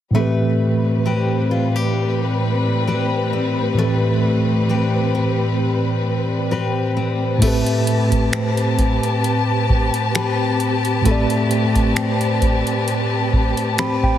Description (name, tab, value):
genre	contemporary R&B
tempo	66 BPM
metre	4/4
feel	swing 54% on 16ths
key	A minor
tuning	A4 = 440 Hz
part	mellow tine electric piano	accompaniment	0.1-14.2 s	A2 to B5	-19 LUFS	right 2 dB	medium stereo tremolo
part	warm studio string section	sustained chords	0.1-14.2 s	A2 to A5	-23 LUFS	left 3 dB	none
part	picked steel-string acoustic guitar	arpeggios	0.1-14.2 s	A3 to B4	-24 LUFS	left 5 dB	ping-pong delay
part	booming analog drum machine	drums	7.4-14.2 s	crash cymbal, finger snaps, hi-hat, kick drum	-20 LUFS	right 1 dB	none
room	light reverb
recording	heavily compressed radio sound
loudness	-16 LUFS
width	side -11 dB against mid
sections	0.1-7.4 A section; 7.4-14.2 B section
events	tine electric piano fill 13.3-14.2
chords	0.1 Am9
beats	| 0.15 1.06 1.97 2.88 | 3.78 4.69 5.60 6.51 | 7.42 8.33 9.24 10.15 | 11.06 11.97 12.88 13.78